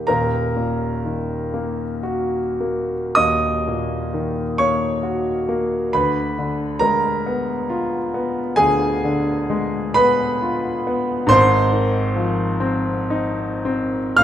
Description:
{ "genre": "classical, romantic nocturne for solo piano", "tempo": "34-47 BPM (dotted quarters)", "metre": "12/8", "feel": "rubato", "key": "Eb minor", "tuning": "A4 = 440 Hz", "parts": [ { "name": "warm concert grand piano", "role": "solo", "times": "0.0-14.2 s", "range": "Eb1 to F6", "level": "-18 LUFS", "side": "equal", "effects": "none" } ], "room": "wet recital hall reverb, RT60 1.4 s", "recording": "none", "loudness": "-18 LUFS", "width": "side -10 dB against mid", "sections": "0.1-14.2 A section", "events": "none", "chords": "0.1 Ebm; 5.9 Ddim7; 11.3 Fm7/Ab" }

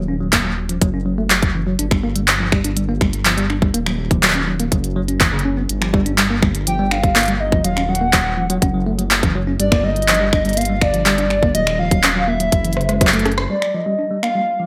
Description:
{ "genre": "IDM", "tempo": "123 BPM", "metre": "4/4", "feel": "straight", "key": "unclear", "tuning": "A4 = 441 Hz", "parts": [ { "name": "bell-like tine electric piano", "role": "arpeggios", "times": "0.0-14.7 s", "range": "C#3 to D4", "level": "-24 LUFS", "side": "equal", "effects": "low-pass filter, digital delay" }, { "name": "dark detuned saw bass", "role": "bass", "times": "0.0-13.5 s", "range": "Eb1 to G1", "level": "-24 LUFS", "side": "equal", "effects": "none" }, { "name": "electronic kick drum", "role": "drums", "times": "0.3-13.1 s", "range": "none", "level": "-20 LUFS", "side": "equal", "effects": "overdrive" }, { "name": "glitchy drum kit", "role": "drums", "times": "0.3-14.3 s", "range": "finger snaps, handclaps, hi-hat, rim click", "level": "-21 LUFS", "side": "equal", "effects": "overdrive, gated reverb" }, { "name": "warbly nostalgic lead", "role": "melody", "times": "6.7-14.7 s", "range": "D5 to G5", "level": "-23 LUFS", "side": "equal", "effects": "chorus, digital delay" } ], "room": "moderate plate reverb, RT60 1.2 s", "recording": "bright 1980s-style digital production", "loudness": "-17 LUFS", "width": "mono", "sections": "0.0-13.5 A section; 13.5-14.7 B section", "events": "drum fill 12.8-13.5; band accent 13.4; filter sweep on tine electric piano 13.5-14.7", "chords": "0.0 Ebm; 0.8 N.C.; 3.7 Ebm; 4.7 F#5; 5.7 G7(no3); 7.6 Ebm; 8.6 N.C.; 9.6 G7(no3); 11.5 Ebm; 12.5 F#7(no3); 13.5 G7(no3)" }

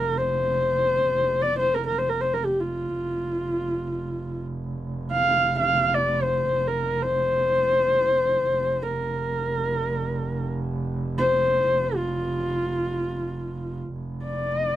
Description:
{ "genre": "mongolian traditional, Mongolian folk", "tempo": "free time", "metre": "none", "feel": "none", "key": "unclear", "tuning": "A4 = 439 Hz", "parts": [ { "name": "dark horsehead fiddle", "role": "melody", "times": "0.0-14.8 s", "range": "F4 to F5", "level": "-22 LUFS", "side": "left 1 dB", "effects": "none" }, { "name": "clear double bass", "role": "drone", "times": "0.0-14.8 s", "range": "F1", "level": "-30 LUFS", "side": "right 2 dB", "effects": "stereo widening" } ], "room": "light reverb", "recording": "dry, close 1970s-style studio recording", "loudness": "-22 LUFS", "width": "side -13 dB against mid", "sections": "0.0-13.9 A section", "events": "none", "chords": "none" }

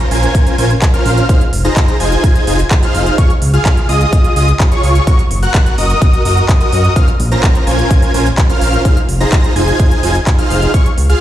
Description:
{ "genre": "EDM, festival progressive house", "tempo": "127 BPM", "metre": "4/4", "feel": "straight", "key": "unclear", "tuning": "A4 = 440 Hz", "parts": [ { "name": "wide unison lead", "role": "arpeggios", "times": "0.0-11.2 s", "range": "Db6 to Bb6", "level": "-21 LUFS", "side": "left 1 dB", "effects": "analog chorus, sidechain pumping, dub echo" }, { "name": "supersaw chords", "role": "riff", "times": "0.0-11.2 s", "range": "Db4 to Bb5", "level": "-16 LUFS", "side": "right 1 dB", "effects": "wide subtle chorus, sidechain pumping, dub echo" }, { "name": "fat analog bass", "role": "bass", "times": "0.1-11.1 s", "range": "F1 to Gb2", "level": "-13 LUFS", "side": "equal", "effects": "sidechain pumping" }, { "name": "big-room dance drum kit", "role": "drums", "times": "0.1-11.2 s", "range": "handclaps, hi-hat", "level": "-22 LUFS", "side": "equal", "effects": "none" }, { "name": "electronic kick drum", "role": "drums", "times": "0.3-10.8 s", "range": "none", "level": "-11 LUFS", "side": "equal", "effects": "none" } ], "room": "little or no reverb", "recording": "played on a big sound system in a bare room, stone room reverb", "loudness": "-9 LUFS", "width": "side -12 dB against mid", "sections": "0.0-11.2 A section", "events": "none", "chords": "0.0 Bbmadd9; 1.3 Fm7; 3.2 Db; 5.1 Gb; 7.0 Bbmadd9; 8.9 Fm7" }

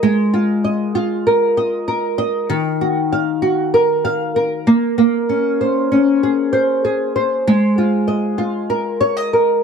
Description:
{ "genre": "indie pop", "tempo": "97 BPM", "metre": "4/4", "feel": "straight", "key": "Ab major", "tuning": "A4 = 441 Hz", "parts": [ { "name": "flamenco guitar", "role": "solo", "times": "0.0-9.6 s", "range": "Eb3 to F5", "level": "-14 LUFS", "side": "equal", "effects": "analog chorus, vibrato effect" } ], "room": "moderate spring reverb, RT60 1.6 s", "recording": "dark, warm production", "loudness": "-14 LUFS", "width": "side -6 dB against mid", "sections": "0.0-9.6 A section", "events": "none", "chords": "0.0 Absus2; 2.5 Ebmadd9; 4.7 Bbm9; 7.5 Absus2" }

